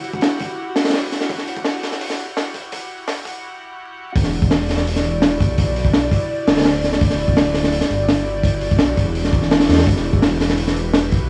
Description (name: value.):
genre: drum and bass, jungle.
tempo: 168 BPM.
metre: 4/4.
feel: straight.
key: E minor.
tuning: A4 = 440 Hz.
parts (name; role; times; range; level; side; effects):
airy breathy pad; sustained chords; 0.0-11.3 s; E4 to F#5; -28 LUFS; equal; chorus, vintage 12-bit sampler grit.
crunchy breakbeat drum kit; drums; 0.0-11.2 s; hi-hat, kick drum, snare drum; -20 LUFS; equal; none.
dark detuned saw bass; bass; 4.2-11.3 s; D1 to E2; -24 LUFS; equal; none.
room: little or no reverb.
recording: dry, gritty hardware recording, vinyl crackle, high-pass filter.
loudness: -18 LUFS.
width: mono.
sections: 0.0-4.2 A section; 4.2-11.3 B section.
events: build-up 0.0-4.2; filter sweep 0.0-4.2; break 3.4-4.2; drop 4.2-11.3.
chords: 0.0 Emadd9; 4.2 Em9.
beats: 0.22 0.58 0.94 | 1.29 1.65 2.01 2.37 | 2.72 3.08 3.44 3.79 | 4.15 4.51 4.87 5.22 | 5.58 5.94 6.29 6.65 | 7.01 7.37 7.72 8.08 | 8.44 8.79 9.15 9.51 | 9.87 10.22 10.58 10.94.